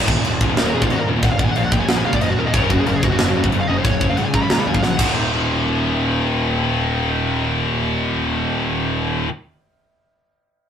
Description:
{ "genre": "heavy metal", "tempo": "184 BPM", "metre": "4/4", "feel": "straight", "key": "Eb minor", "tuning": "A4 = 440 Hz", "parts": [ { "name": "heavy high-gain guitar", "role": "riff", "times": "0.0-9.3 s", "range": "Eb2 to Gb3", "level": "-22 LUFS", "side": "left 6 dB", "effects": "distortion" }, { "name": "scooped high-gain guitar", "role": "riff", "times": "0.0-9.3 s", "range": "Eb2 to Gb3", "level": "-24 LUFS", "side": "right 5 dB", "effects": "distortion" }, { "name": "fuzz picked electric bass", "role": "bass", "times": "0.0-9.2 s", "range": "Eb1 to Eb2", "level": "-23 LUFS", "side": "equal", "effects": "overdrive" }, { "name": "tight metal drum kit", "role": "drums", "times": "0.1-5.1 s", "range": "china cymbal, crash cymbal, kick drum, snare drum", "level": "-20 LUFS", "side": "equal", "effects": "none" }, { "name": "high-gain lead guitar", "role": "melody", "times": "0.6-5.1 s", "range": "F4 to Cb6", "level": "-24 LUFS", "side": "equal", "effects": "distortion" } ], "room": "moderate studio ambience, RT60 0.5 s", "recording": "rough rehearsal-room recording", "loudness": "-16 LUFS", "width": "side -8 dB against mid", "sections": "0.0-5.2 A section; 5.2-7.8 B section", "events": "lead electric guitar solo 0.0-5.2; drum fill 4.8-5.2", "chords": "0.0 Eb5; 2.5 Gb5; 5.0 Eb5" }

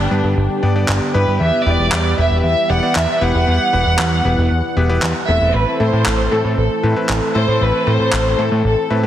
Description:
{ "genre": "italo disco", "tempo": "116 BPM", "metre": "4/4", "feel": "straight", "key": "unclear", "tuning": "A4 = 440 Hz", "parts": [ { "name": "rich chamber violin section", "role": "melody", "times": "0.0-8.9 s", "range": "D4 to F#5", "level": "-19 LUFS", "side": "right 1 dB", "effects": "vintage 12-bit sampler grit, digital delay" }, { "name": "lush unison pad", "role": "sustained chords", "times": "0.0-9.1 s", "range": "D3 to F#5", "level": "-22 LUFS", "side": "equal", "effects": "chorus" }, { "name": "bright electric grand piano", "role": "stabs", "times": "0.0-9.1 s", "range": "A3 to D5", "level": "-22 LUFS", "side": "left 2 dB", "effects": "vintage 12-bit sampler grit" }, { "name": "fat analog bass", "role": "bass", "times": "0.0-9.1 s", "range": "E1 to A2", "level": "-17 LUFS", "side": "equal", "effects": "none" }, { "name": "electronic handclaps", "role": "drums", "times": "0.9-8.2 s", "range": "none", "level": "-22 LUFS", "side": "equal", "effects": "gated reverb" } ], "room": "moderate plate reverb, RT60 2.0 s", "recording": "heavily compressed radio sound", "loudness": "-14 LUFS", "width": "side -11 dB against mid", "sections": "0.0-9.1 A section", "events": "filter sweep on analog synth pad 0.0-9.1", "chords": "0.0 G; 1.4 Em; 5.5 Am" }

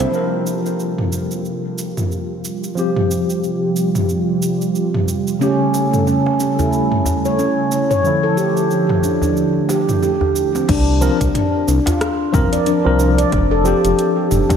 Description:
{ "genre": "organic downtempo", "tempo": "91 BPM", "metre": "4/4", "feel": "swing 58% on 16ths", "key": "unclear", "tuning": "A4 = 440 Hz", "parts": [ { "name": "tine electric piano", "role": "accompaniment", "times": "0.0-14.6 s", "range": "C#3 to C5", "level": "-21 LUFS", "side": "left 2 dB", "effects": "fast stereo tremolo, sidechain pumping, tape echo" }, { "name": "warm analog pad", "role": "sustained chords", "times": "0.0-10.7 s", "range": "C3 to A4", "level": "-22 LUFS", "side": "right 3 dB", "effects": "chorus, sidechain pumping" }, { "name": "handpan", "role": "arpeggios", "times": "0.0-0.1, 5.4-14.6 s", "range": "C4 to D5", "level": "-18 LUFS", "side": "equal", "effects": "tape echo" }, { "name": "smooth synth bass", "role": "bass", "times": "0.0-0.1, 10.7-14.4 s", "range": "F1 to C2", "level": "-18 LUFS", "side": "equal", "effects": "sidechain pumping" }, { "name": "deep house drum kit", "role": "drums", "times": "0.0-14.6 s", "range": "cabasa, crash cymbal, hi-hat, rim click, toms", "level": "-24 LUFS", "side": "right 1 dB", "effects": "overdrive" }, { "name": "darbuka", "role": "percussion", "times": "0.0-0.1, 5.7-14.6 s", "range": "none", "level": "-24 LUFS", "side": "left 1 dB", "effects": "none" }, { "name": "electronic kick drum", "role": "drums", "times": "10.7-14.6 s", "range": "none", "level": "-19 LUFS", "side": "equal", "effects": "overdrive" } ], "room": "wet lush hall reverb, RT60 2.1 s", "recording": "dreamy mix soaked in reverb", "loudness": "-15 LUFS", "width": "side -7 dB against mid", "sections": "0.1-10.7 A section; 10.7-14.6 B section", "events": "filter sweep on analog synth pad 0.1-10.7", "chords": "0.1 C7sus4; 2.8 Fsus2; 5.4 A7; 8.0 Dmadd9; 10.7 C7sus4; 13.3 Fsus2" }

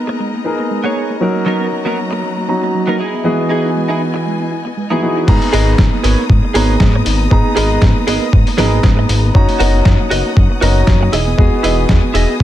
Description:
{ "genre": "nu-disco, nu disco", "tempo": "118 BPM", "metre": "4/4", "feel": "swing 55% on 16ths", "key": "G# minor", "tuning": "A4 = 440 Hz", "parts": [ { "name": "dark baby grand piano", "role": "accompaniment", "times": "0.0-12.4 s", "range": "E3 to A#5", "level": "-18 LUFS", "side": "equal", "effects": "digital delay" }, { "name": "warm symphonic string section", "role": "sustained chords", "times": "0.0-12.4 s", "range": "E3 to D#6", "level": "-25 LUFS", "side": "left 2 dB", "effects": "sidechain pumping" }, { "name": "soft round pluck", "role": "arpeggios", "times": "0.1-12.4 s", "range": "F#3 to D#5", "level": "-24 LUFS", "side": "right 2 dB", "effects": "chorus, sidechain pumping, ping-pong delay" }, { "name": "direct-recorded clean electric guitar", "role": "riff", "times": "0.1-12.3 s", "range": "F#3 to D#5", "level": "-20 LUFS", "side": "right 2 dB", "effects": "analog chorus, digital delay" }, { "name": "chorused synth bass", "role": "bass", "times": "5.3-12.4 s", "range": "E1 to G#2", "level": "-14 LUFS", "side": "equal", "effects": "none" }, { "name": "dusty soul sampler-style drum kit", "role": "drums", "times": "5.3-12.3 s", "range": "crash cymbal, hi-hat, snare drum", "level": "-20 LUFS", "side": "left 1 dB", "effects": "overdrive" }, { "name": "electronic kick drum", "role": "drums", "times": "5.3-12.4 s", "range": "none", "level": "-12 LUFS", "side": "equal", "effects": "overdrive" } ], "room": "light reverb", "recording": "none", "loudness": "-11 LUFS", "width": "side -12 dB against mid", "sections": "0.0-5.3 A section; 5.3-12.4 B section", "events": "drop 5.3-12.4", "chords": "0.0 G#madd9; 1.2 Bmaj7/F#; 3.0 Emaj7; 5.3 G#madd9; 9.3 Bmaj7/F#; 11.1 Emaj7" }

